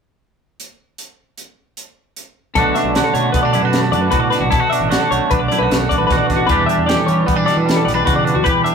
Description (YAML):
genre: math rock and midwest emo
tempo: 152 BPM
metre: 5/4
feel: straight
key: B minor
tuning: A4 = 442 Hz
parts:
  - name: crisp fusion drum kit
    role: drums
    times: 0.6-8.7 s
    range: hi-hat, kick drum, snare drum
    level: -21 LUFS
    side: right 1 dB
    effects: none
  - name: twangy electric guitar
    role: accompaniment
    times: 2.6-8.7 s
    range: E2 to A4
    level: -17 LUFS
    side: right 4 dB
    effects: vibrato effect
  - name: twelve-string electric guitar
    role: arpeggios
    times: 2.6-8.7 s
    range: F#4 to E5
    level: -18 LUFS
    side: left 7 dB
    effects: none
  - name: fuzz fingered electric bass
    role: bass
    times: 2.6-8.6 s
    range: A1 to E3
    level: -22 LUFS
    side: equal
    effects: overdrive
room: light reverb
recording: rough rehearsal-room recording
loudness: -13 LUFS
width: side -6 dB against mid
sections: 0.6-2.5 A section; 2.5-8.7 B section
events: none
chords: 0.6 N.C.; 2.5 Bm7; 6.5 Em7